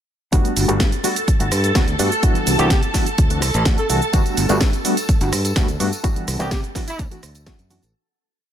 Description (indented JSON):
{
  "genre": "filtered disco house",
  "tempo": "126 BPM",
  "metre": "4/4",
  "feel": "straight",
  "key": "G major",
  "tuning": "A4 = 440 Hz",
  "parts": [
    { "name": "barky reed electric piano", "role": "accompaniment", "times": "0.3-7.8 s", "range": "E3 to F#4", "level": "-23 LUFS", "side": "equal", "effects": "overdrive, fast tremolo, phaser, sidechain pumping" },
    { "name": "string machine, full ensemble", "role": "sustained chords", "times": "0.3-8.0 s", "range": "A4 to A5", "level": "-25 LUFS", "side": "right 1 dB", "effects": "ensemble chorus, sidechain pumping" },
    { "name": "fingered electric bass", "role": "bass", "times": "0.3-7.9 s", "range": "G1 to C3", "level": "-22 LUFS", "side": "equal", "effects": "sidechain pumping" },
    { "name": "electronic kick drum", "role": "drums", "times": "0.3-7.6 s", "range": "none", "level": "-18 LUFS", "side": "equal", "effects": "none" },
    { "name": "house drum kit", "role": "drums", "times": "0.3-7.9 s", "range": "hi-hat, rim click, shaker, snare drum", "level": "-24 LUFS", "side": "right 2 dB", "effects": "sidechain pumping on hats, sidechain pumping on perc" },
    { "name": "warm horn section", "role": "melody", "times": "2.6-7.0 s", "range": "E4 to A4", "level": "-26 LUFS", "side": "right 1 dB", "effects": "vintage 12-bit sampler grit, sidechain pumping, digital delay" },
    { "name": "tambourine", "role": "percussion", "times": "4.1-7.9 s", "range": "none", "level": "-35 LUFS", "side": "left 3 dB", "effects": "sidechain pumping on perc" }
  ],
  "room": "digital ambience",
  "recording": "none",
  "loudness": "-16 LUFS",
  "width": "side -10 dB against mid",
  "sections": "0.3-7.9 drop",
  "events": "drop 0.3-7.9; fade-out 5.4-7.9",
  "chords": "0.3 Gmaj9; 2.2 Cmaj9#11; 3.2 D7; 4.1 Gmaj9; 6.0 Cmaj9#11; 7.0 D7",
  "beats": "| 0.33 0.80 1.28 1.75 | 2.23 2.71 3.18 3.66 | 4.13 4.61 5.09 5.56 | 6.04 6.52 6.99 7.47"
}